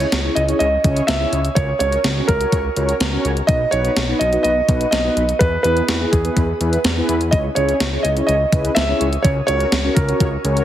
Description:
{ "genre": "synth-pop", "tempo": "125 BPM", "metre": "4/4", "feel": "straight", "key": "C# minor", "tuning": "A4 = 440 Hz", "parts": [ { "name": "warm concert grand piano", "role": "melody", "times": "0.0-10.6 s", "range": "G#4 to E5", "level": "-20 LUFS", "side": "right 1 dB", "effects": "shimmer reverb, digital delay" }, { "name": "mellow synth brass", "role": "accompaniment", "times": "0.0-10.6 s", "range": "B3 to C#5", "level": "-22 LUFS", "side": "equal", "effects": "chorus, shimmer reverb" }, { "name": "fat analog bass", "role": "bass", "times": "0.0-10.6 s", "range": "B1 to E2", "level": "-21 LUFS", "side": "equal", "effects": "none" }, { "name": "gated 80s digital drum machine", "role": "drums", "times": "0.0-10.6 s", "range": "hi-hat, kick drum, snare drum", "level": "-20 LUFS", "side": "equal", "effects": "gated reverb, gated reverb snare, overdrive" } ], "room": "moderate plate reverb, RT60 1.3 s", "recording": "heavily compressed radio sound, multiband compression", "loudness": "-15 LUFS", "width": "side -11 dB against mid", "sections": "0.0-10.6 A section", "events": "none", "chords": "0.0 C#madd9; 1.6 F#/C#; 3.5 B; 5.4 E; 7.3 C#madd9; 9.2 F#/C#" }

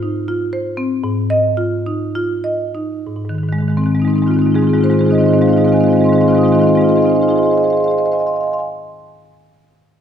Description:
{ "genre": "classical, contemporary piece for solo marimba", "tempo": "192-239 BPM (eighths)", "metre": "7/8", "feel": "rubato", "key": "Ab major", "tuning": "A4 = 441 Hz", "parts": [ { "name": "marimba with medium hard mallets", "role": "solo", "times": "0.0-8.7 s", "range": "Ab2 to Eb6", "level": "-13 LUFS", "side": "equal", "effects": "none" } ], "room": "wet recital hall reverb, RT60 1.6 s", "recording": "recorded in a church or concert hall", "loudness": "-13 LUFS", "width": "side -8 dB against mid", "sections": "0.0-3.0 A section; 3.0-7.2 B section", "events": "slowing down 0.0-3.0", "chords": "0.0 Ab6; 1.0 Fm7/Ab; 3.0 Ab6" }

